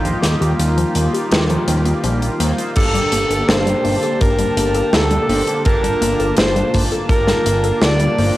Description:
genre	synthwave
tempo	83 BPM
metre	4/4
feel	straight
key	G minor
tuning	A4 = 440 Hz
part	brassy analog pad	sustained chords	0.0-8.4 s	D3 to A5	-23 LUFS	left 1 dB	chorus, sidechain pumping, cassette tape
part	chorused polysynth	stabs	0.0-8.4 s	Bb3 to A5	-25 LUFS	right 1 dB	cassette tape, tape echo
part	fat analog bass	bass	0.0-8.3 s	G1 to Eb2	-20 LUFS	equal	sidechain pumping
part	warbly dusty pluck	arpeggios	0.1-8.3 s	F3 to A4	-26 LUFS	left 2 dB	chorus, cassette tape, tape echo
part	big rock drum kit	drums	0.1-8.3 s	crash cymbal, hi-hat, snare drum	-21 LUFS	equal	cassette tape
part	breathy alto saxophone	melody	2.8-8.4 s	A4 to D5	-19 LUFS	equal	cassette tape, tape echo
part	kick drum	drums	2.8-7.2 s	none	-20 LUFS	equal	cassette tape
room	moderate spring reverb, RT60 2.8 s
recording	home recording on cassette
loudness	-14 LUFS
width	side -16 dB against mid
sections	0.0-2.8 A section; 2.8-8.4 B section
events	filter sweep on analog synth pad 0.0-2.8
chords	0.0 Ebadd9; 2.8 Gmadd9

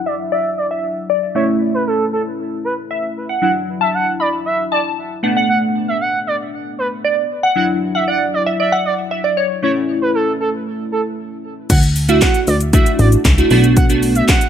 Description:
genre	dance-pop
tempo	116 BPM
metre	4/4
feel	straight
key	D major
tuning	A4 = 440 Hz
part	glassy wavetable pluck	melody	0.0-11.1 s	C#5 to B5	-19 LUFS	left 1 dB	chorus, low-pass filter, digital delay
part	glassy digital keys	accompaniment	0.0-14.3 s	F#3 to F#4	-19 LUFS	equal	chorus, sidechain pumping, low-pass filter
part	expressive portamento lead	melody	0.1-14.5 s	A4 to F#5	-20 LUFS	right 3 dB	chorus, low-pass filter, digital delay
part	plucky analog bass	bass	11.7-14.2 s	A1 to D2	-14 LUFS	equal	sidechain pumping
part	house drum kit	drums	11.7-14.5 s	crash cymbal, handclaps, hi-hat, kick drum, shaker, snare drum	-14 LUFS	equal	none
room	light reverb, digital ambience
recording	none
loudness	-14 LUFS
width	side -9 dB against mid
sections	0.0-11.7 A section; 11.7-14.5 B section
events	filter sweep 0.0-11.7; drop 11.7-14.5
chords	0.0 Dadd9; 1.4 A; 3.4 Dadd9; 5.2 Bm7; 7.6 Dadd9; 9.6 A; 11.7 Dadd9; 13.5 Bm7

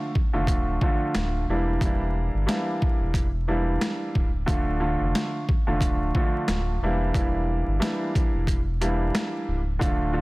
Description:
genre	hip hop, boom-bap hip-hop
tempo	90 BPM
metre	4/4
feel	swing 57% on 16ths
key	unclear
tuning	A4 = 444 Hz
part	warm grand piano	accompaniment	0.0-10.2 s	D3 to F4	-27 LUFS	right 1 dB	cassette tape, high-pass filter, low-pass filter
part	boom bap sampler-style drum kit	drums	0.2-10.0 s	hi-hat, kick drum, snare drum	-25 LUFS	equal	overdrive
part	sub bass with octave	bass	0.3-10.2 s	C#1 to G1	-27 LUFS	equal	none
room	little or no reverb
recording	dense, heavily limited modern master, vinyl crackle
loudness	-22 LUFS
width	side -22 dB against mid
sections	0.0-10.2 A section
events	none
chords	0.0 Dm; 1.5 Em7b5; 4.5 Dm; 6.8 Em7b5

